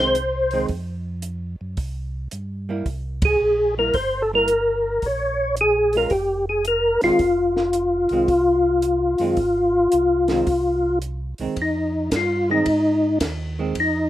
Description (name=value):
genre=soul jazz organ trio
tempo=110 BPM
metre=4/4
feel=swing 67% on 8ths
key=F minor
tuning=A4 = 441 Hz
part: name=percussive tonewheel organ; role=melody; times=0.0-14.1 s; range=Eb4 to Db5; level=-18 LUFS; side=left 1 dB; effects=slow rotary speaker, chorus vibrato
part: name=hollow-body jazz guitar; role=accompaniment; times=0.0-13.8 s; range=Eb3 to F4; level=-27 LUFS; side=right 5 dB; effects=none
part: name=mellow tonewheel organ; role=bass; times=0.0-14.1 s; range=F1 to Ab2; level=-29 LUFS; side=right 1 dB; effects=slow rotary speaker
part: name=compact cocktail drum kit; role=drums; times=0.1-13.9 s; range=hi-hat, kick drum, ride cymbal, snare drum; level=-28 LUFS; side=right 1 dB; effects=none
room=little or no reverb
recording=rough home demo mix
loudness=-18 LUFS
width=side -14 dB against mid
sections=0.0-11.6 A section; 11.6-14.1 B section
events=band accent 3.1; tonewheel organ solo 11.6-14.1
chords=0.0 F5; 2.9 C7; 5.0 Bbm7; 7.2 Fm7